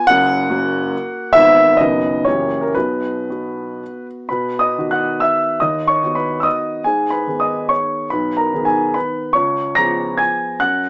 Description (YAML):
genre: classical, romantic triple-time dance for piano with dotted rhythms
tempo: 108-157 BPM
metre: 3/4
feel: rubato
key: B major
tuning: A4 = 440 Hz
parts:
  - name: warm grand piano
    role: solo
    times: 0.0-10.9 s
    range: F#1 to A#6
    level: -14 LUFS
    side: equal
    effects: none
room: light reverb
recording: worn, warbling old tape, cassette tape, warbly pitch drift, small speaker sound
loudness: -14 LUFS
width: side -29 dB against mid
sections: 0.0-4.3 A section; 4.3-10.9 B section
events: none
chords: 0.1 F#; 1.3 G#m; 1.8 B/F#; 2.3 F#7b9; 2.8 B5; 4.3 B; 5.6 B/D#; 6.9 G#m; 8.1 G#m/B; 9.4 C#7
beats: | 0.07 0.49 0.93 | 1.35 1.78 2.26 | 2.75 3.28 3.81 | 4.30 4.76 5.20 | 5.61 6.03 6.46 | 6.86 7.28 7.71 | 8.11 8.52 8.95 | 9.36 9.78 10.20 | 10.62